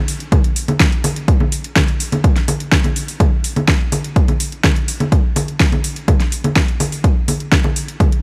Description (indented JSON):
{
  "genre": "techno",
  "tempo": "125 BPM",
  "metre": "4/4",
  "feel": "straight",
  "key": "none",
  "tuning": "none",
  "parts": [
    { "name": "deep house drum kit", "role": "drums", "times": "0.1-8.2 s", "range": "congas, hi-hat, snare drum", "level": "-21 LUFS", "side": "equal", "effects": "overdrive, studio reverb, sidechain pumping on hats, sidechain pumping on perc" },
    { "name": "electronic kick drum", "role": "drums", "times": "0.3-8.1 s", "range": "none", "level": "-17 LUFS", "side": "equal", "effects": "overdrive, studio reverb" }
  ],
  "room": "digital ambience",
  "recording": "none",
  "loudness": "-16 LUFS",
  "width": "mono",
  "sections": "0.0-8.2 A section",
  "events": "none",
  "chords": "none",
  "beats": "0.32 0.80 | 1.28 1.76 2.24 2.72 | 3.20 3.68 4.16 4.64 | 5.12 5.60 6.08 6.56 | 7.04 7.52 8.00"
}